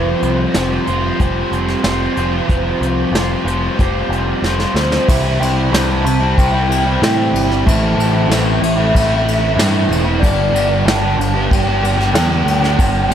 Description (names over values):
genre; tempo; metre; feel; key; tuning
rock, shoegaze and dream pop; 93 BPM; 4/4; straight; unclear; A4 = 439 Hz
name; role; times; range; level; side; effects
overdriven electric guitar; riff; 0.0-13.1 s; G2 to C5; -16 LUFS; right 1 dB; lush chorus
growling picked electric bass; bass; 0.0-13.1 s; E1 to A2; -18 LUFS; equal; overdrive
vintage brush drum kit; drums; 0.2-13.1 s; crash cymbal, hi-hat, kick drum, snare drum; -19 LUFS; equal; none
hollow clarinet-like synth lead; melody; 5.1-13.1 s; D5 to A5; -21 LUFS; left 1 dB; chorus, tape echo
room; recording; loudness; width
light reverb, small room reverb; none; -13 LUFS; side -9 dB against mid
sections
0.0-5.1 A section; 5.1-13.1 A section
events
drum fill 4.4-5.1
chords
0.0 Fsus2; 5.1 C; 7.6 Am; 10.2 G